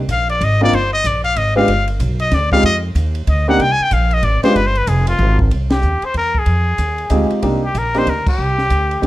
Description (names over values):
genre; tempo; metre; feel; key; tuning
jazz, small-group swing and bop; 188 BPM; 3/4; swing 63% on 8ths; C minor; A4 = 441 Hz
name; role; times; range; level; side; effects
upright bass; bass; 0.0-9.1 s; F1 to F2; -17 LUFS; equal; none
trumpet with straight mute; melody; 0.1-9.1 s; F4 to Ab5; -18 LUFS; left 2 dB; none
compact cocktail drum kit; drums; 0.1-9.1 s; crash cymbal, hi-hat, kick drum, ride cymbal, snare drum; -25 LUFS; equal; none
warm grand piano; accompaniment; 0.6-4.5, 7.1-9.1 s; Ab3 to G4; -16 LUFS; equal; none
room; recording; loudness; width
light reverb; none; -13 LUFS; side -16 dB against mid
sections
0.0-5.5 A section; 5.5-9.1 B section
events
muted trumpet solo 0.0-5.5; band accent 5.7, 8.2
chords
0.0 Cm7 (rootless); 1.7 G7; 2.6 F5; 3.6 C5; 4.6 Fmadd9; 5.5 Cm; 6.5 Fm7; 7.4 Cm7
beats
0.09 0.41 | 0.73 1.04 1.36 | 1.68 2.00 2.32 | 2.64 2.96 3.28 | 3.60 3.92 4.24 | 4.55 4.87 5.19 | 5.51 5.83 6.15 | 6.47 6.79 7.11 | 7.43 7.75 8.07 | 8.39 8.71 9.04